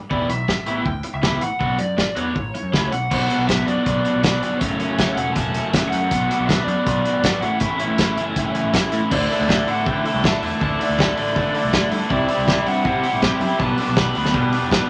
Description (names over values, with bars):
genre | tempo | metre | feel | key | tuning
indie rock | 160 BPM | 4/4 | straight | unclear | A4 = 439 Hz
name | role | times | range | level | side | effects
lead guitar through a small cranked amp | melody | 0.1-14.7 s | C#5 to B5 | -28 LUFS | equal | overdrive
crunchy overdriven guitar | riff | 0.1-14.9 s | F#2 to A4 | -25 LUFS | equal | none
growling picked electric bass | bass | 0.1-14.8 s | E1 to D3 | -29 LUFS | equal | overdrive
loose indie drum kit | drums | 0.1-14.8 s | crash cymbal, hi-hat, kick drum, snare drum | -24 LUFS | equal | none
clean electric guitar | riff | 3.3-14.9 s | C3 to B4 | -29 LUFS | equal | none
room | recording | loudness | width
wet club reverb, RT60 0.5 s | nothing above 10.6 kHz | -20 LUFS | mono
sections
0.0-3.1 A section; 3.1-9.1 B section; 9.1-14.9 C section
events
none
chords
0.1 Em; 1.6 Bm; 2.4 A; 3.1 Bm; 4.6 F#m; 6.1 Bm; 7.4 Aadd9; 9.1 Dsus2; 12.1 Cadd9; 13.6 G/B